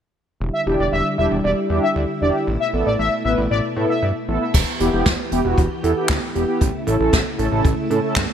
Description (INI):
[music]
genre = synth-pop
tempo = 116 BPM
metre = 4/4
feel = straight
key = E dorian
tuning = A4 = 438 Hz
[part]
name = ensemble organ-string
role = sustained chords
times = 0.4-8.3 s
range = B2 to G4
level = -26 LUFS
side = left 1 dB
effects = ensemble chorus
[part]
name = fat analog bass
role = bass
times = 0.4-8.3 s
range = E1 to A2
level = -23 LUFS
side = equal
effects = none
[part]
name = analog synth brass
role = second line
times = 0.5-4.0 s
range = D5 to E5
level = -22 LUFS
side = left 1 dB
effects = chorus, digital delay
[part]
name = mellow synth brass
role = accompaniment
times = 0.7-8.2 s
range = B3 to B4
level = -22 LUFS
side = right 1 dB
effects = chorus
[part]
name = jazz brush drum kit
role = drums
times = 4.5-8.3 s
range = crash cymbal, handclaps, hi-hat, kick drum, snare drum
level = -19 LUFS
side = equal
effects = gated reverb
[sound]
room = moderate scoring stage reverb, RT60 1.6 s, studio reverb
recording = none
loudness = -17 LUFS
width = side -8 dB against mid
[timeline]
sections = 0.4-4.5 A section; 4.5-8.3 B section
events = none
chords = 0.4 Em7; 2.5 Asus2; 4.5 Em; 6.6 A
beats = | 0.40 0.92 1.44 1.96 | 2.47 2.99 3.51 4.02 | 4.54 5.06 5.58 6.09 | 6.61 7.13 7.64 8.16